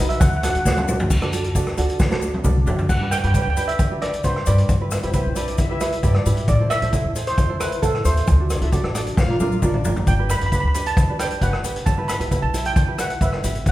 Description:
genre	calypso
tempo	134 BPM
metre	4/4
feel	straight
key	G major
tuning	A4 = 440 Hz
part	steel pan	melody	0.0-13.7 s	A4 to B5	-25 LUFS	right 2 dB	none
part	tenor ukulele	accompaniment	0.0-13.6 s	D4 to C5	-27 LUFS	right 3 dB	none
part	upright bass	bass	0.0-13.7 s	G1 to D3	-22 LUFS	equal	none
part	street-band drum kit	drums	0.1-13.7 s	crash cymbal, hi-hat, kick drum, rim click, snare drum, toms	-21 LUFS	equal	none
part	tube shaker	percussion	0.2-13.7 s	none	-36 LUFS	left 8 dB	none
part	mellow horn section	second line	4.9-10.0 s	B3 to F5	-30 LUFS	left 4 dB	none
room	wet recital hall reverb, RT60 1.6 s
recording	recorded in a church or concert hall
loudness	-18 LUFS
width	side -15 dB against mid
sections	0.0-1.1 A section; 1.1-2.9 B section; 2.9-13.7 C section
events	drum fill 0.7-1.1, 2.0-2.9, 9.2-10.1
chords	0.2 D; 2.9 G; 4.7 Em7; 6.5 Am; 8.3 D7; 9.2 Bbmaj7; 10.1 G; 11.9 Em/G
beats	0.21 0.66 | 1.10 1.55 2.00 2.44 | 2.89 3.34 3.79 4.24 | 4.69 5.13 5.58 6.03 | 6.48 6.93 7.38 7.83 | 8.28 8.72 9.17 9.62 | 10.07 10.52 10.97 11.42 | 11.87 12.32 12.77 13.22 | 13.66

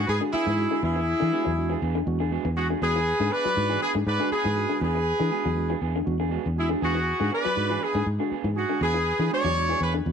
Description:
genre	afrobeat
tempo	120 BPM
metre	4/4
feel	swing 55% on 16ths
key	E mixolydian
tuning	A4 = 440 Hz
part	brilliant horn section	melody	0.0-9.9 s	E4 to C#5	-26 LUFS	left 1 dB	none
part	clear trumpet	second line	0.0-9.9 s	G#4 to D5	-34 LUFS	right 11 dB	none
part	electric guitar through a small old amp	arpeggios	0.0-10.0 s	D3 to F#3	-32 LUFS	left 13 dB	none
part	fingered electric bass	bass	0.0-10.1 s	E2 to E3	-27 LUFS	left 1 dB	none
part	mellow tine electric piano	accompaniment	0.2-10.1 s	G#3 to F#4	-34 LUFS	right 13 dB	medium stereo tremolo
part	electric guitar through a small old amp	stabs	0.2-10.0 s	B3 to G#4	-34 LUFS	right 14 dB	none
room	light reverb, studio reverb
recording	1960s-style stereo with parts hard left and right, nothing above 10.3 kHz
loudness	-22 LUFS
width	side -7 dB against mid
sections	0.0-10.1 A section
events	none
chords	0.0 E7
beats	| 0.07 0.57 1.07 1.57 | 2.07 2.57 3.07 3.56 | 4.07 4.56 5.06 5.56 | 6.06 6.56 7.06 7.56 | 8.06 8.56 9.06 9.56 | 10.06

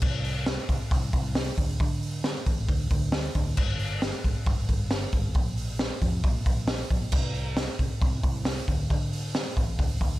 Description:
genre	quiet-loud alternative rock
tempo	135 BPM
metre	4/4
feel	straight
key	unclear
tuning	A4 = 440 Hz
part	woody fretless electric bass	bass	0.0-10.2 s	G1 to D3	-30 LUFS	equal	lush chorus
part	raw garage drum kit	drums	0.0-10.1 s	crash cymbal, hi-hat, kick drum, snare drum	-26 LUFS	equal	none
room	light reverb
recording	none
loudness	-25 LUFS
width	side -17 dB against mid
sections	0.0-10.2 A section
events	none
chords	none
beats	| 0.03 0.47 0.91 1.36 | 1.80 2.25 2.69 3.13 | 3.58 4.02 4.47 4.91 | 5.35 5.80 6.24 6.68 | 7.13 7.57 8.01 8.46 | 8.90 9.34 9.78

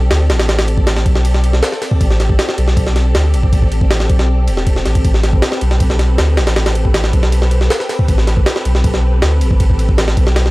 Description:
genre	drum and bass, jungle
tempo	158 BPM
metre	4/4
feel	straight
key	A minor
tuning	A4 = 440 Hz
part	soft string machine	sustained chords	0.0-10.5 s	C4 to D5	-22 LUFS	equal	ensemble chorus
part	saturated sub bass	bass	0.0-10.5 s	E1 to D2	-13 LUFS	equal	tube saturation
part	jungle sampler-style drum kit	drums	0.1-10.5 s	kick drum, ride cymbal, snare drum	-15 LUFS	equal	none
room	little or no reverb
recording	dry, gritty hardware recording, vinyl crackle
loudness	-11 LUFS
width	side -20 dB against mid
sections	0.0-10.5 A section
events	none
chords	0.0 Am9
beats	0.11 | 0.49 0.87 1.25 1.63 | 2.01 2.39 2.77 3.15 | 3.53 3.91 4.29 4.67 | 5.05 5.43 5.81 6.19 | 6.57 6.95 7.33 7.71 | 8.09 8.46 8.84 9.22 | 9.60 9.98 10.36

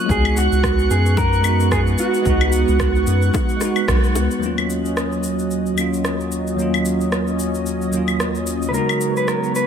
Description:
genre	sunset chillout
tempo	111 BPM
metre	4/4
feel	swing 57% on 16ths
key	Eb minor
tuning	A4 = 440 Hz
part	bell-like tine electric piano	accompaniment	0.0-9.7 s	Eb2 to Gb4	-22 LUFS	moving between left 4 dB and right 4 dB	fast stereo tremolo, auto-pan, ping-pong delay
part	lush unison pad	sustained chords	0.0-9.7 s	Gb3 to Db6	-24 LUFS	right 1 dB	chorus
part	drifting glass-harmonics texture	texture	0.0-4.4 s	Gb6	-31 LUFS	right 4 dB	chorus, built-in reverb
part	electric guitar through a small old amp	melody	0.1-3.8, 8.7-9.7 s	Gb4 to Cb5	-22 LUFS	right 2 dB	spring reverb, digital delay
part	round analog bass	bass	0.1-4.3 s	Cb2 to Gb2	-18 LUFS	equal	none
part	electronic kick drum	drums	0.1-4.0 s	none	-22 LUFS	equal	none
part	electronic shaker, claves and rim click	drums	0.1-9.7 s	none	-26 LUFS	left 2 dB	none
part	bongos	percussion	1.2-4.3 s	none	-29 LUFS	left 6 dB	none
room	light reverb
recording	none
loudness	-16 LUFS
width	side -8 dB against mid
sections	0.0-4.4 A section; 4.4-9.7 B section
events	band accent 3.9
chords	0.1 Db7sus4; 4.4 Ebm7; 8.7 Db7sus4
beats	| 0.10 0.64 1.18 1.72 | 2.26 2.80 3.34 3.88 | 4.42 4.96 5.50 6.04 | 6.58 7.12 7.66 8.20 | 8.74 9.29

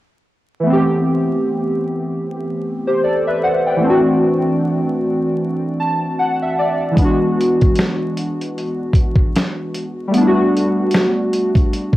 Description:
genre	lo-fi hip hop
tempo	76 BPM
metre	4/4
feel	swing 59% on 16ths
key	A dorian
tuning	A4 = 440 Hz
part	warbly lo-fi synth keys	accompaniment	0.6-12.0 s	E3 to A5	-16 LUFS	equal	chorus, low-pass filter, cassette tape
part	dusty soul sampler-style drum kit	drums	7.0-12.0 s	hi-hat, kick drum, snare drum	-15 LUFS	equal	cassette tape
room	moderate studio reverb, RT60 0.6 s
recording	home recording on cassette, vinyl crackle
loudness	-15 LUFS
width	side -16 dB against mid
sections	0.7-12.0 A section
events	synth keys fill 5.4-7.0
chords	0.7 Am9; 3.8 D7; 7.0 E7; 10.1 Gmaj7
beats	| 0.65 1.44 2.23 3.02 | 3.81 4.60 5.39 6.18 | 6.97 7.76 8.55 9.34 | 10.12 10.91 11.70

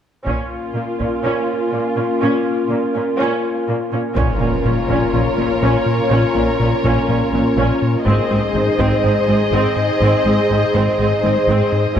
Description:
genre	cinematic, hybrid orchestral and electronic film score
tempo	123 BPM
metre	4/4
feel	straight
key	Bb minor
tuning	A4 = 439 Hz
part	rich symphonic viola section	accompaniment	0.3-12.0 s	Bb3 to Ab4	-22 LUFS	right 1 dB	none
part	warbly tape-like pad	sustained chords	0.5-12.0 s	Ab3 to C5	-20 LUFS	equal	chorus, built-in reverb
part	rich symphonic cello section	bass	0.3-12.0 s	Ab2 to Bb2	-24 LUFS	right 2 dB	none
part	taiko ensemble	drums	0.3-1.2, 4.2-5.1, 8.1-9.0, 12.0 s	none	-26 LUFS	equal	none
part	warm symphonic violin section	second line	4.2-12.0 s	Bb4 to Eb5	-21 LUFS	left 4 dB	none
part	round analog bass	riff	4.2-12.0 s	Ab2 to Bb3	-20 LUFS	left 2 dB	none
part	rich symphonic double bass section	bass	4.2-12.0 s	Ab1 to Bb1	-24 LUFS	right 3 dB	none
part	impact	sound effects	4.2-6.1 s	none	-27 LUFS	equal	none
room	moderate concert hall reverb, RT60 2.3 s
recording	none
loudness	-15 LUFS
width	side -9 dB against mid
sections	0.3-4.2 A section; 4.2-12.0 B section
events	build-up 4.2-12.0; impact 4.2-6.1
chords	0.3 Bbm; 8.1 Ab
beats	| 0.26 0.75 1.24 1.72 | 2.21 2.70 3.19 3.67 | 4.16 4.65 5.14 5.63 | 6.11 6.60 7.09 7.58 | 8.06 8.55 9.04 9.53 | 10.02 10.50 10.99 11.48 | 11.97

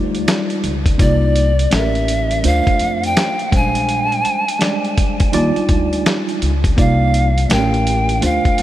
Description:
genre	hip hop, jazz-hop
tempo	83 BPM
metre	4/4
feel	swing 64% on 16ths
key	unclear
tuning	A4 = 441 Hz
part	mellow tine electric piano	accompaniment	0.0-8.6 s	G3 to D5	-20 LUFS	right 2 dB	medium stereo tremolo
part	upright bass	bass	0.0-8.6 s	A1 to F2	-18 LUFS	equal	none
part	dusty soul sampler-style drum kit	drums	0.1-8.6 s	hi-hat, kick drum, snare drum	-19 LUFS	equal	none
part	pan flute	melody	1.0-8.6 s	D5 to Ab5	-20 LUFS	equal	tape echo
room	moderate huge ambient reverb, RT60 7.1 s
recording	dreamy mix soaked in reverb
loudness	-13 LUFS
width	side -14 dB against mid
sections	0.0-8.6 A section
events	none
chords	0.0 Ebmaj9; 1.0 Cm11; 1.7 A7b9; 2.4 Dm7; 3.5 Bb13; 5.3 Ebmaj9; 6.8 Cm11; 7.5 A7b9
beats	0.27 | 1.00 1.72 2.44 3.17 | 3.89 4.61 5.33 6.06 | 6.78 7.50 8.22

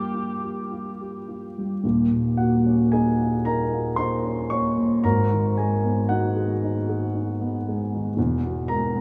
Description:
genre	classical, impressionist duo for cor anglais and grand piano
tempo	57 BPM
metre	3/4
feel	rubato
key	Eb minor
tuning	A4 = 441 Hz
part	mellow cor anglais	melody	0.0-0.7 s	G4	-40 LUFS	equal	none
part	dark grand piano	accompaniment	0.0-9.0 s	Eb1 to Db6	-24 LUFS	equal	none
room	wet cathedral reverb, RT60 6.4 s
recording	in a vast, echoing space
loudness	-23 LUFS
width	mono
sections	0.0-1.8 A section; 1.8-9.0 B section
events	none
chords	0.0 Gm7; 1.8 Ebm9; 5.0 Abm7; 8.2 E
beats	0.71 | 1.84 2.92 3.98 | 5.04 6.09 7.13 | 8.17

